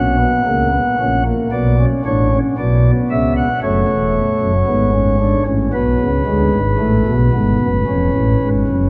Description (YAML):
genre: classical, baroque-style 3-part fugue for pipe organ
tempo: 56 BPM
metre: 4/4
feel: straight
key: B minor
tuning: A4 = 436 Hz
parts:
  - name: pipe organ, flutes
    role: solo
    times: 0.0-8.9 s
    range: E1 to F#5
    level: -16 LUFS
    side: equal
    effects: none
room: wet cathedral reverb, RT60 6.2 s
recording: in a vast, echoing space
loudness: -16 LUFS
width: mono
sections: 0.0-8.9 A section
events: none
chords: 0.0 F#; 1.5 Bm; 3.6 F#m; 5.7 Bm; 7.9 C#7/E#